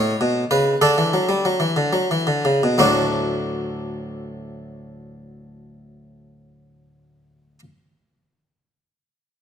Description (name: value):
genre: classical, baroque-style suite movement for harpsichord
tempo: 57-69 BPM (dotted quarters)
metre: 6/8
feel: rubato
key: D major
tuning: A4 = 439 Hz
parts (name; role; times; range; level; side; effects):
- harpsichord; solo; 0.0-7.6 s; D2 to C#5; -18 LUFS; equal; none
room: moderate recital hall reverb, RT60 1.6 s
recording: close, detailed microphones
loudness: -17 LUFS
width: side -8 dB against mid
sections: 0.0-2.8 A section; 2.8-6.9 B section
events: slowing down 0.0-2.8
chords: 0.0 A; 0.8 D